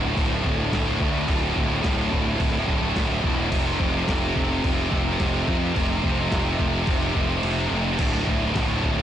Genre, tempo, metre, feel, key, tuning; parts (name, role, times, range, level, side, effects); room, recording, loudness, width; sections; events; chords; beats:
heavy metal; 107 BPM; 4/4; straight; D minor; A4 = 440 Hz
high-gain distorted guitar; riff; 0.0-9.0 s; D2 to C3; -24 LUFS; equal; distortion
fuzz picked electric bass; bass; 0.0-9.0 s; D1 to F2; -26 LUFS; equal; overdrive, tube saturation
boom bap sampler-style drum kit; drums; 0.2-9.0 s; crash cymbal, kick drum, snare drum; -26 LUFS; equal
little or no reverb; blown-out, overdriven recording, overdrive, nothing above 10.4 kHz; -20 LUFS; side -10 dB against mid
0.0-9.0 A section
kick and snare drop out 7.4-8.0
0.0 D5; 3.5 F5; 8.0 D5
0.17 0.72 | 1.28 1.84 2.40 2.95 | 3.51 4.07 4.63 5.19 | 5.75 6.31 6.87 7.43 | 7.99 8.55